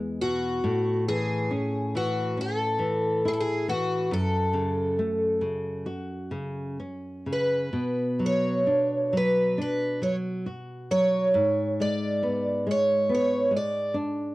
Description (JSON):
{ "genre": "fado-style ballad", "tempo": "69 BPM", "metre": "4/4", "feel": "rubato", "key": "F# minor", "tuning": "A4 = 441 Hz", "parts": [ { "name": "nylon-string guitar", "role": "accompaniment", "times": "0.0-14.3 s", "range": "E2 to F#4", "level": "-28 LUFS", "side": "equal", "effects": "cassette tape" }, { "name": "picked twelve-string acoustic guitar", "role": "melody", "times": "0.2-13.9 s", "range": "F#4 to D5", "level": "-25 LUFS", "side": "equal", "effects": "cassette tape" } ], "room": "moderate small room reverb, RT60 0.5 s", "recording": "home recording on cassette", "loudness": "-24 LUFS", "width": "side -19 dB against mid", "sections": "0.0-14.3 A section", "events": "none", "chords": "0.0 E; 0.6 A; 4.1 F#m; 7.7 Bmadd9; 11.4 G#dim", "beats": "| 0.65 1.52 2.39 3.26 | 4.12 4.99 5.87 6.79 | 7.74 8.68 9.59 10.48 | 11.37 12.24 13.10 13.96" }